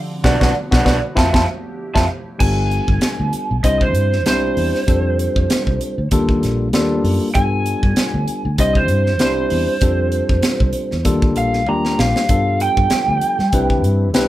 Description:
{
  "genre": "electric jazz fusion",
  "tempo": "97 BPM",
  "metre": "4/4",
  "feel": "swing 55% on 16ths",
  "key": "F lydian",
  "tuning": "A4 = 440 Hz",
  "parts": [
    { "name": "evolving wavetable pad", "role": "sustained chords", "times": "0.0-2.4, 13.1-14.3 s", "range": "D3 to A3", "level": "-32 LUFS", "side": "right 2 dB", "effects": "none" },
    { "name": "tine electric piano", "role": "accompaniment", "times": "0.2-14.3 s", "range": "G3 to C5", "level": "-21 LUFS", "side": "left 2 dB", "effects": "none" },
    { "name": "fingered electric bass", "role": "bass", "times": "0.2-14.3 s", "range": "G1 to G3", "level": "-20 LUFS", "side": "equal", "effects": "none" },
    { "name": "crisp fusion drum kit", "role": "drums", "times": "0.2-14.3 s", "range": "crash cymbal, hi-hat, kick drum, snare drum, toms", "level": "-19 LUFS", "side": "equal", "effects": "none" },
    { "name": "lead guitar through a small cranked amp", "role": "melody", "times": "0.3-13.8 s", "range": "B4 to Bb5", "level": "-20 LUFS", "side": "right 2 dB", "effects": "overdrive" }
  ],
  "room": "moderate studio reverb, RT60 0.5 s",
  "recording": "band playing live in one room",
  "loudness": "-14 LUFS",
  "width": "side -14 dB against mid",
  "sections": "0.0-2.4 A section; 2.4-14.3 A section",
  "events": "band accent 0.0-2.4; lead electric guitar solo 0.0-14.3; drum fill 1.8-2.4, 11.7-12.3",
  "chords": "0.0 Bm7; 1.2 Fmaj9; 2.4 G9; 3.6 C; 4.9 F69; 6.1 Ebmaj9#11; 7.4 G9; 8.6 C; 9.8 F69; 11.1 Ebmaj9#11; 12.3 G9; 13.5 Cmaj7",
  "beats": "0.55 1.17 1.79 | 2.41 3.02 3.64 4.26 | 4.88 5.50 6.12 6.73 | 7.35 7.97 8.59 9.21 | 9.82 10.44 11.06 11.68 | 12.29 12.91 13.53 14.14"
}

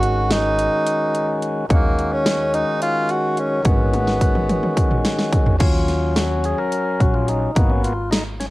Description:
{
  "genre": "progressive instrumental, band music in an uneven meter",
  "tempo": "215 BPM (eighths)",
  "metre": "7/8",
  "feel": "straight",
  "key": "G# dorian",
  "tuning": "A4 = 440 Hz",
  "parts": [
    { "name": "clear tenor saxophone", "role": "melody", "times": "0.0-5.3 s", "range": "A#3 to F#4", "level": "-21 LUFS", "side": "right 1 dB", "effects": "cassette tape" },
    { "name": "percussive tonewheel organ", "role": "accompaniment", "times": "0.0-8.5 s", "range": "D#3 to A#4", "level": "-22 LUFS", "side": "left 1 dB", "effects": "overdrive" },
    { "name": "upright bass", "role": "bass", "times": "0.0-8.5 s", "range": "G#1 to D#2", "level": "-24 LUFS", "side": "equal", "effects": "none" },
    { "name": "dubstep drum kit", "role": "drums", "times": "0.0-8.5 s", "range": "crash cymbal, hi-hat, kick drum, snare drum, toms", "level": "-19 LUFS", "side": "equal", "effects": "cassette tape" }
  ],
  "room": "light reverb",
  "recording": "home recording on cassette",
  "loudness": "-16 LUFS",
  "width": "side -19 dB against mid",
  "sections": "0.0-5.6 A section; 5.6-8.5 B section",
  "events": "drum fill 3.9-5.6; tonewheel organ solo 5.6-8.5",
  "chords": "0.0 G#5; 1.7 D#m7; 3.7 G#m7; 5.6 D#m7; 7.6 G#m9",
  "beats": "0.03 0.30 0.58 0.86 1.14 1.42 | 1.70 1.98 2.26 2.54 2.82 3.10 3.37 | 3.65 3.93 4.21 4.49 4.77 5.05 5.33 | 5.61 5.89 6.17 6.45 6.72 7.00 7.28 | 7.56 7.84 8.12 8.40"
}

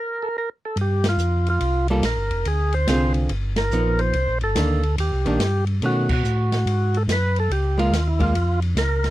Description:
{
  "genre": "soul jazz organ trio",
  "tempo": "142 BPM",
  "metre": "4/4",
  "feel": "swing 65% on 8ths",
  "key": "unclear",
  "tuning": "A4 = 439 Hz",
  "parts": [
    { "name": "percussive tonewheel organ", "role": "melody", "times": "0.0-9.1 s", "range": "E4 to C5", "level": "-24 LUFS", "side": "right 1 dB", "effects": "slow rotary speaker" },
    { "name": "mellow tonewheel organ", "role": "bass", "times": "0.8-9.1 s", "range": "F1 to B2", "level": "-21 LUFS", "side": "equal", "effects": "slow rotary speaker" },
    { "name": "open jazz drum kit", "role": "drums", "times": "0.8-9.1 s", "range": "crash cymbal, hi-hat, kick drum, ride cymbal, snare drum", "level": "-29 LUFS", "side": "equal", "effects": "none" },
    { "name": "archtop guitar, miked and amplified", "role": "accompaniment", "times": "1.9-8.3 s", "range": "D3 to A4", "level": "-22 LUFS", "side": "right 1 dB", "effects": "none" }
  ],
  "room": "little or no reverb",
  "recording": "dry, close 1970s-style studio recording",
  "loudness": "-19 LUFS",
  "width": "side -15 dB against mid",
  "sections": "0.8-9.1 A section",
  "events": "stop 0.0-0.8; band accent 1.0, 3.5, 6.0",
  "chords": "0.0 N.C.; 0.8 Gm7; 2.5 Dm7b5; 3.3 G7alt; 4.1 Cm9; 5.8 B9; 7.5 Db6",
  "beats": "0.35 | 0.77 1.19 1.61 2.04 | 2.46 2.88 3.30 3.72 | 4.14 4.56 4.99 5.41 | 5.83 6.25 6.67 7.09 | 7.51 7.93 8.35 8.77"
}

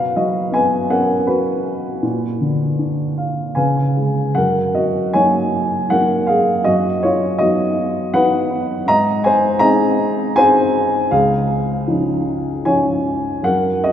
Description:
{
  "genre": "classical, lyrical solo piano",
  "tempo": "79 BPM",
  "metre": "3/4",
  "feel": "uneven beats, rubato",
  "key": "F# major from 4.4 s",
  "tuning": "A4 = 440 Hz",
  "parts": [
    { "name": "dark upright piano", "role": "solo", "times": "0.0-13.9 s", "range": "C#2 to A#5", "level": "-15 LUFS", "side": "equal", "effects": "none" }
  ],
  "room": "wet cathedral reverb, RT60 4.7 s",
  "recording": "recorded in a church or concert hall",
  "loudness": "-15 LUFS",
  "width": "side -9 dB against mid",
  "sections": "0.0-4.4 A section; 4.4-13.9 B section",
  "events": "upright piano fill 3.2-4.4",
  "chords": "0.0 Bsus2; 2.0 Bb; 3.6 Db5; 4.4 F#6; 6.7 B/F#; 8.9 G#; 11.1 C#add9",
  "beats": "0.54 1.28 | 2.03 2.78 3.56 | 4.36 5.14 5.91 | 6.67 7.41 8.15 | 8.88 9.62 10.36 | 11.12 11.88 12.66 | 13.44"
}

